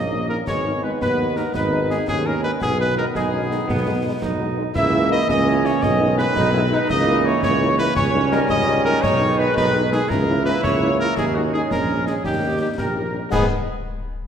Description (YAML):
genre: military-style march for wind band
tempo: 112 BPM (dotted quarters)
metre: 6/8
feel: straight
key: G# minor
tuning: A4 = 440 Hz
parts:
  - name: mellow cornet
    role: melody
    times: 0.0-13.5 s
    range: F#4 to E5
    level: -24 LUFS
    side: equal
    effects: none
  - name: clear euphonium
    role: second line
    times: 0.0-13.0 s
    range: G#3 to G4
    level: -25 LUFS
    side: right 3 dB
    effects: none
  - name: warm woodwind section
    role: second line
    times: 0.0-13.5 s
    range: B3 to E5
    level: -26 LUFS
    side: left 2 dB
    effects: none
  - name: mellow trombone section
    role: sustained chords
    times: 0.0-13.5 s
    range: D#3 to C#4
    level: -27 LUFS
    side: right 2 dB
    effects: none
  - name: mellow tuba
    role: bass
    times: 0.0-13.5 s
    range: G#1 to G#2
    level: -23 LUFS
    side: right 2 dB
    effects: none
  - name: mellow French horn section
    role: accompaniment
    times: 0.1-13.5 s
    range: D#3 to E4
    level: -29 LUFS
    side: left 4 dB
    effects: none
  - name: concert snare drum, clash cymbals and concert bass drum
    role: drums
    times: 0.5-13.5 s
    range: none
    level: -29 LUFS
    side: left 2 dB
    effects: none
room: wet scoring stage reverb, RT60 1.8 s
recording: none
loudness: -17 LUFS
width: side -8 dB against mid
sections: 0.0-13.3 A section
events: none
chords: 0.5 G#m; 2.6 G#m/B; 4.8 A#dim/C#; 5.8 G#m/B; 6.9 A#dim/C#; 8.0 D#7/C#; 9.0 G#m/B; 10.1 A#dim/C#; 11.2 D#7sus4; 12.2 D#7; 13.3 G#m